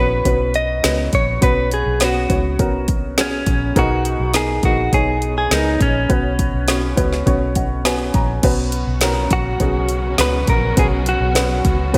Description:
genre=piano-driven pop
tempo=103 BPM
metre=4/4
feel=straight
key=B major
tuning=A4 = 442 Hz
part: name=direct-recorded clean electric guitar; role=melody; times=0.0-12.0 s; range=C#4 to D#5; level=-23 LUFS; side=equal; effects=none
part: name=dark upright piano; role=accompaniment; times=0.0-12.0 s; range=B2 to A#5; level=-24 LUFS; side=equal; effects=none
part: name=vintage muted fingered electric bass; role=bass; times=0.0-12.0 s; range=A#1 to C#2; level=-24 LUFS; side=equal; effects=none
part: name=deep house drum kit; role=drums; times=0.3-12.0 s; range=crash cymbal, hi-hat, kick drum, snare drum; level=-22 LUFS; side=equal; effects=gated reverb
part: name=warm studio string section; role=sustained chords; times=8.4-12.0 s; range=B2 to F#4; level=-30 LUFS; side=equal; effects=none
room=light reverb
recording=bright 1980s-style digital production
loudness=-18 LUFS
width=mono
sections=0.0-8.4 A section; 8.4-12.0 B section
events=upright piano fill 7.3-8.4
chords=0.0 Bsus2; 3.8 G#madd9; 6.1 Bsus2

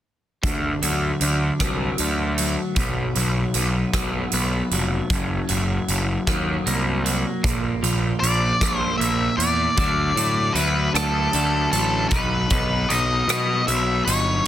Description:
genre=quiet-loud alternative rock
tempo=51 BPM (dotted quarters)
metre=6/8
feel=straight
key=D mixolydian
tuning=A4 = 440 Hz
part: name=twelve-string electric guitar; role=arpeggios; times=0.4-14.5 s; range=F#2 to D#4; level=-26 LUFS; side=equal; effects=none
part: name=fuzz picked electric bass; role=bass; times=0.4-14.4 s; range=F1 to B2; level=-23 LUFS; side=equal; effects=overdrive
part: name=big rock drum kit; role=drums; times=0.4-14.3 s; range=hi-hat, kick drum, rim click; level=-26 LUFS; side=right 1 dB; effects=soft clipping on snare
part: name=octave-fuzz lead guitar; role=melody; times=8.2-14.5 s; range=A4 to E5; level=-22 LUFS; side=left 2 dB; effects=distortion, plate reverb
room=light reverb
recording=dense, heavily limited modern master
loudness=-19 LUFS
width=side -11 dB against mid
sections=0.4-9.8 A section; 9.8-14.5 B section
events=none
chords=0.4 D; 2.8 B5; 5.1 F#; 7.4 Bb; 9.8 D; 12.1 B

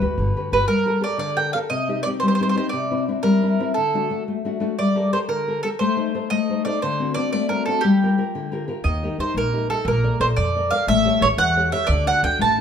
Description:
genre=italian folk, Italian serenade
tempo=118 BPM (dotted quarters)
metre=6/8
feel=straight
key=G minor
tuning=A4 = 440 Hz
part: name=mandolin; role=melody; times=0.0-12.6 s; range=G4 to A5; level=-22 LUFS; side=right 3 dB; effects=none
part: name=nylon-string guitar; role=accompaniment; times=0.0-12.6 s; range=C3 to D5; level=-22 LUFS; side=left 4 dB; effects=none
part: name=upright bass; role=bass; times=0.0-0.6, 8.8-12.6 s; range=G1 to F2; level=-24 LUFS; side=equal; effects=none
room=moderate recital hall reverb, RT60 1.4 s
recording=minimal, uncompressed stereo recording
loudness=-18 LUFS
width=side -8 dB against mid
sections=0.7-12.6 A section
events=none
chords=0.0 Gmaj7; 0.7 Gmadd9; 1.7 Cm; 2.7 Cadd9; 3.8 D; 4.8 Gmadd9; 5.8 Adim; 6.8 D7; 7.8 Gm7; 8.9 Eb; 9.9 Bbmaj7; 10.9 A7; 11.9 D

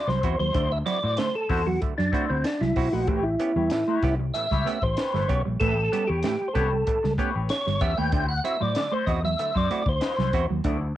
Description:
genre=funk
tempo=95 BPM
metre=4/4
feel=straight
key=unclear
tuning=A4 = 441 Hz
part: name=percussive tonewheel organ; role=melody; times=0.0-10.5 s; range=C4 to G5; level=-26 LUFS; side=equal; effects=overdrive, chorus vibrato, fast rotary speaker
part: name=clean electric guitar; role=accompaniment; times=0.0-11.0 s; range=E4 to E5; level=-34 LUFS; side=left 8 dB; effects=wah, cassette tape, plate reverb
part: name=mellow electric guitar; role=riff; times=0.1-10.8 s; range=F#3 to D4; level=-32 LUFS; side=right 8 dB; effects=spring reverb, cassette tape
part: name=fingered electric bass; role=bass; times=0.1-10.9 s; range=G1 to A2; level=-27 LUFS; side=left 1 dB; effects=none
part: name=compact cocktail drum kit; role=drums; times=0.1-10.8 s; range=hi-hat, kick drum, snare drum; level=-29 LUFS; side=left 1 dB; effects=cassette tape
part: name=mellow clav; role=stabs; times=0.2-10.9 s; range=A2 to G4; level=-34 LUFS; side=right 6 dB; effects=cassette tape, analog delay
room=moderate studio reverb, RT60 0.5 s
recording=home recording on cassette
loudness=-22 LUFS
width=side -13 dB against mid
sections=0.0-11.0 A section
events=tonewheel organ solo 0.0-11.0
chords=0.0 D9; 3.1 A9; 8.1 D9

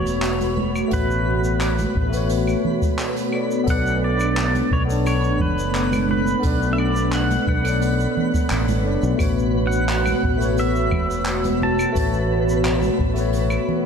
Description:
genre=sunset chillout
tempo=87 BPM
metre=4/4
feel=straight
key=unclear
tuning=A4 = 443 Hz
part: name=pedal steel guitar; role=melody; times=0.0-13.7 s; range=B4 to A5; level=-27 LUFS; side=equal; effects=tape echo
part: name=bright tine electric piano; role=accompaniment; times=0.0-13.9 s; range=A3 to D5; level=-26 LUFS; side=moving between left 7 dB and right 3 dB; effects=auto-pan, digital delay
part: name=airy breathy pad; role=sustained chords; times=0.0-13.9 s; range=B2 to F#4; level=-24 LUFS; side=equal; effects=chorus
part: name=fretless electric bass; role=bass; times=0.0-13.6 s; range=E1 to B1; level=-23 LUFS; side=equal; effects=none
part: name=twinkling granular texture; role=texture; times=0.0-13.9 s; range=B4 to B5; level=-34 LUFS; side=equal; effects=built-in reverb
part: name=soft brush drum kit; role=drums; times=0.1-13.6 s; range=claves, handclaps, hi-hat, shaker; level=-30 LUFS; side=equal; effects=none
part: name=congas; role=percussion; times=0.4-13.8 s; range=none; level=-29 LUFS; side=right 6 dB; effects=none
part: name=electronic kick drum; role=drums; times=0.9-13.1 s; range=none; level=-24 LUFS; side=equal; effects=none
room=moderate lush hall reverb, RT60 2.2 s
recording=dark, warm production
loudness=-18 LUFS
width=side -6 dB against mid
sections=0.0-13.9 A section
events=none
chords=0.0 A69; 3.3 Bm9; 9.2 A69

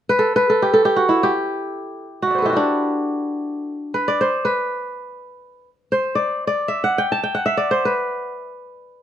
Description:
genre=west african traditional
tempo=free time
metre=none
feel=none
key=G major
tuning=A4 = 441 Hz
part: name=kora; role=arpeggios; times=0.1-9.0 s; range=D4 to A5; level=-18 LUFS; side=equal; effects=none
room=light reverb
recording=dark, warm production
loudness=-18 LUFS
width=side -10 dB against mid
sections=0.0-9.0 A section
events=kora solo 0.0-9.0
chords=0.0 G

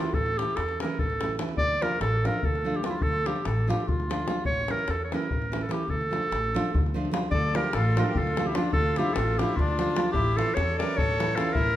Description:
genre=balkan folk, Balkan wedding band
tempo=294 BPM (eighths)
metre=7/8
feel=straight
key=D harmonic minor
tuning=A4 = 443 Hz
part: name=bright clarinet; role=melody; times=0.0-11.8 s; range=E4 to D5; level=-28 LUFS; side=equal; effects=none
part: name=nylon-string guitar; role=accompaniment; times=0.0-11.5 s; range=E3 to F4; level=-31 LUFS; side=right 2 dB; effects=none
part: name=upright bass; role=bass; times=0.1-11.8 s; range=A1 to E2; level=-30 LUFS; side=equal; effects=none
part: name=davul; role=percussion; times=0.1-11.7 s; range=none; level=-30 LUFS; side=left 2 dB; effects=none
part: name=accordion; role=second line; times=7.3-11.8 s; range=D4 to Bb4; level=-32 LUFS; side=left 4 dB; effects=none
room=moderate recital hall reverb, RT60 1.5 s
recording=minimal, uncompressed stereo recording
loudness=-24 LUFS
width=side -12 dB against mid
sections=0.0-7.3 A section; 7.3-11.8 A section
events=none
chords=0.0 A; 1.6 Dm; 4.5 A; 5.9 Dm; 10.2 A

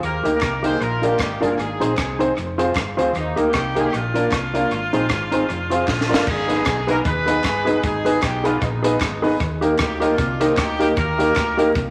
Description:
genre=ska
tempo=154 BPM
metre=4/4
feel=swing 56% on 8ths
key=unclear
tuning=A4 = 441 Hz
part: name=clear horn section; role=melody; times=0.0-11.7 s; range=Bb3 to C5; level=-27 LUFS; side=equal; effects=none
part: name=hollow-body short-scale fingered electric bass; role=bass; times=0.0-11.9 s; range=F1 to Eb2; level=-30 LUFS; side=equal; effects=none
part: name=compact cocktail drum kit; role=drums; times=0.0-11.9 s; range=crash cymbal, hi-hat, kick drum, rim click, snare drum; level=-27 LUFS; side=equal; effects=tape echo
part: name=mellow electric guitar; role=accompaniment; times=0.2-11.7 s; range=Eb4 to Eb5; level=-29 LUFS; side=equal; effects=spring reverb
part: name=warm upright piano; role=stabs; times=0.2-11.7 s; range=Bb3 to D5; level=-24 LUFS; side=equal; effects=none
part: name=group handclap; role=percussion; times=0.4-11.5 s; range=none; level=-38 LUFS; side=equal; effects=none
room=wet large studio reverb, RT60 1.2 s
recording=vinyl crackle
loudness=-20 LUFS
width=mono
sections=0.0-6.3 A section; 6.3-11.9 B section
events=drum fill 5.9-6.3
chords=0.0 Eb; 0.8 Bb; 1.6 Ab; 2.4 Fm; 3.1 Eb; 3.9 Bb; 4.7 Ab; 5.5 Fm; 5.9 Bb; 6.3 Abm; 9.4 Eb

